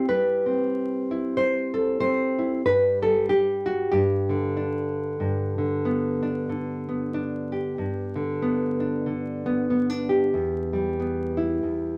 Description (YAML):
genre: folk, solo fingerstyle acoustic guitar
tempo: 93 BPM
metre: 4/4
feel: swing 59% on 8ths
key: G major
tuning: A4 = 440 Hz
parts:
  - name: nylon-string guitar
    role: solo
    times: 0.0-12.0 s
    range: E2 to C5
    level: -25 LUFS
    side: equal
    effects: none
room: wet studio ambience, RT60 0.5 s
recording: vinyl crackle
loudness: -25 LUFS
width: mono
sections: 0.0-5.2 A section; 5.2-12.0 B section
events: none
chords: 0.0 Cmaj7/G; 2.6 N.C.; 3.9 G5; 5.2 G; 10.3 Em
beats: | 0.08 0.72 1.36 2.00 | 2.64 3.28 3.92 4.56 | 5.21 5.85 6.49 7.13 | 7.77 8.42 9.06 9.70 | 10.35 10.99 11.63